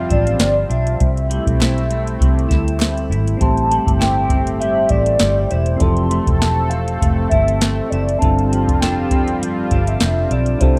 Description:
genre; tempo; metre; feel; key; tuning
indie pop, bedroom pop; 100 BPM; 4/4; swing 55% on 16ths; unclear; A4 = 440 Hz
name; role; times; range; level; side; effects
hollow clarinet-like synth lead; melody; 0.0-10.8 s; C5 to C6; -23 LUFS; equal; lush chorus, tape echo
clean electric guitar; accompaniment; 0.0-10.8 s; G2 to E4; -28 LUFS; equal; lush chorus, vibrato effect
warm analog pad; sustained chords; 0.0-10.8 s; C3 to A4; -27 LUFS; equal; chorus, tremolo
vintage muted fingered electric bass; bass; 0.0-10.8 s; E1 to D2; -21 LUFS; equal; none
soft vintage rhythm box; drums; 0.1-10.8 s; hi-hat, kick drum, snare drum; -21 LUFS; equal; none
group handclap; percussion; 0.4-10.2 s; none; -36 LUFS; equal; none
soft electric-piano-like synth keys; accompaniment; 3.4-10.8 s; E3 to C5; -27 LUFS; equal; chorus, tremolo, cassette tape
room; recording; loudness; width
digital ambience; rough home demo mix; -17 LUFS; mono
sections
0.0-10.8 A section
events
drum fill 10.6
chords
0.0 G7sus4; 1.0 C6; 3.4 Am7; 5.8 Fmaj7; 8.2 G7sus4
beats
0.40 | 1.00 1.61 2.21 2.81 | 3.41 4.01 4.61 5.21 | 5.81 6.41 7.01 7.61 | 8.21 8.81 9.41 10.01 | 10.61

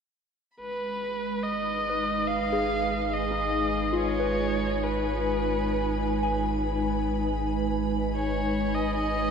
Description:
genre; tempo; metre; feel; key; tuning
ambient; 72 BPM; 4/4; straight; G# dorian; A4 = 439 Hz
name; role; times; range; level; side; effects
dark electric violin; melody; 0.6-9.3 s; B4 to E#5; -30 LUFS; equal; tape echo
airy breathy pad; sustained chords; 0.6-9.3 s; G#3 to G#5; -29 LUFS; right 1 dB; chorus
warm sub bass; bass; 0.6-9.3 s; G#1; -33 LUFS; equal; none
clear symphonic violin section; texture; 0.6-9.3 s; B5; -48 LUFS; left 3 dB; none
soft synth bell; arpeggios; 1.9-9.3 s; D#4 to G#5; -33 LUFS; left 2 dB; chorus, phaser, tape echo
room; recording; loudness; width
wet huge ambient reverb, RT60 7.4 s; none; -25 LUFS; side -6 dB against mid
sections
0.6-9.3 A section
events
fade-in on violin section 0.6-9.3; filter sweep on analog synth pad 0.6-9.3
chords
0.6 G#m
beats
| 0.60 1.44 2.29 3.14 | 3.97 4.81 5.65 6.48 | 7.31 8.13 8.96

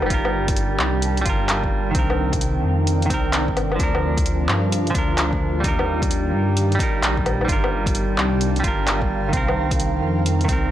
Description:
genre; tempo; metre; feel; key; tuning
future garage; 130 BPM; 4/4; swing 65% on 16ths; G minor; A4 = 435 Hz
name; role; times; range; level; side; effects
semi-hollow electric guitar; accompaniment; 0.0-10.7 s; Eb3 to Bb4; -24 LUFS; right 3 dB; sidechain pumping, tape echo
ethereal airy pad; sustained chords; 0.0-10.7 s; C3 to Bb5; -27 LUFS; left 1 dB; ensemble chorus, built-in reverb, sidechain pumping
dark detuned saw bass; bass; 0.0-10.7 s; Eb1 to G2; -23 LUFS; equal; sidechain pumping
deep house drum kit; drums; 0.0-10.6 s; handclaps, hi-hat, woodblock; -24 LUFS; left 1 dB; overdrive, studio reverb
electronic kick drum; drums; 0.1-10.6 s; none; -24 LUFS; equal; overdrive, studio reverb
room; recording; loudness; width
digital ambience; dry, gritty hardware recording, cassette tape; -18 LUFS; side -12 dB against mid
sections
0.0-10.7 A section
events
none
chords
0.1 Gm7; 1.9 Cm7; 3.8 Bb/D; 5.6 Eb; 7.5 Gm7; 9.3 Cm7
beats
| 0.10 0.56 1.02 1.49 | 1.95 2.41 2.87 3.33 | 3.79 4.25 4.72 5.18 | 5.64 6.10 6.56 7.02 | 7.49 7.95 8.41 8.87 | 9.33 9.79 10.26

